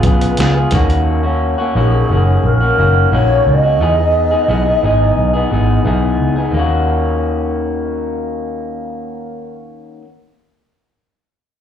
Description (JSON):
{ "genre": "indie pop, bedroom pop", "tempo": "88 BPM", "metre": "4/4", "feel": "straight", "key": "Eb minor", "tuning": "A4 = 440 Hz", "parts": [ { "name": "mellow long shakuhachi", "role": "melody", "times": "0.0-5.9 s", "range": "Ab4 to Eb5", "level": "-16 LUFS", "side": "equal", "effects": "lush chorus, plate reverb, slapback echo, tape echo" }, { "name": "electric guitar through a small old amp", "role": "accompaniment", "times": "0.0-10.1 s", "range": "Db3 to Ab4", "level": "-18 LUFS", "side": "left 3 dB", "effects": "lush chorus, warbly pitch drift, plate reverb, slapback echo" }, { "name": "vintage muted fingered electric bass", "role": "bass", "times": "0.0-9.8 s", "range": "Gb1 to E2", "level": "-15 LUFS", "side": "right 1 dB", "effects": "none" }, { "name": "dusty soul sampler-style drum kit", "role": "drums", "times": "0.0-1.1 s", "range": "hi-hat, kick drum, snare drum", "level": "-15 LUFS", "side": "equal", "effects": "none" } ], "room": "light reverb", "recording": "live gig heard through the venue's PA, club reverb", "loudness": "-12 LUFS", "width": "side -9 dB against mid", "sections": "0.0-6.5 A section; 6.5-9.3 B section", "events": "none", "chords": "0.0 Db7; 0.7 Ebm7; 3.8 Emaj7; 6.5 Ebm7" }